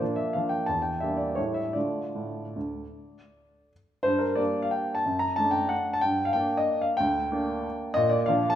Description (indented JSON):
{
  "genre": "classical, piano waltz",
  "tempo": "146-199 BPM",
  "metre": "3/4",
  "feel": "rubato",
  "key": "D minor, G minor from 4.1 s",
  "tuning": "A4 = 436 Hz",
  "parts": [
    { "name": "warm upright piano", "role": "solo", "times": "0.0-8.6 s", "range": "D2 to Bb5", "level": "-24 LUFS", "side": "equal", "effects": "none" }
  ],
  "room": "moderate recital hall reverb, RT60 1.4 s",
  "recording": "minimal, uncompressed stereo recording",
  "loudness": "-24 LUFS",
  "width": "side -10 dB against mid",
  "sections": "0.0-4.1 A section; 4.1-8.6 B section",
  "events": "none",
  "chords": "0.0 Bb; 0.7 Em7b5; 1.4 A7; 1.8 Dm; 4.1 Gm; 5.1 D/F#; 6.0 Gm; 8.0 Bb"
}